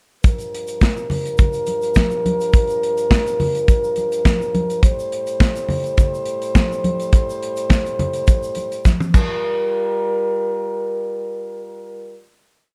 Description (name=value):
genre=disco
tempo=104 BPM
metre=4/4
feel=straight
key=G minor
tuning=A4 = 445 Hz
part: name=dark French horn section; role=sustained chords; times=0.2-12.3 s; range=G2 to C5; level=-24 LUFS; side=equal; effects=none
part: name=modern studio drum kit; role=drums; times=0.2-9.3 s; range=crash cymbal, hi-hat, kick drum, snare drum, toms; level=-18 LUFS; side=equal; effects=none
part: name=congas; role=percussion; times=0.2-9.7 s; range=none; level=-27 LUFS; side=equal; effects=none
part: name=tube shaker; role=percussion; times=0.2-9.7 s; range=none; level=-45 LUFS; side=equal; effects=none
room=studio reverb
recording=dark, warm production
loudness=-19 LUFS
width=mono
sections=0.2-9.4 breakdown; 9.4-11.7 final hit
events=drum fill 8.9-9.4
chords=0.2 Gm7; 4.8 Am7; 9.1 Gm7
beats=| 0.24 0.82 1.39 1.96 | 2.54 3.11 3.69 4.26 | 4.83 5.41 5.98 6.56 | 7.13 7.71 8.28 8.86 | 9.43 10.01 10.58 11.15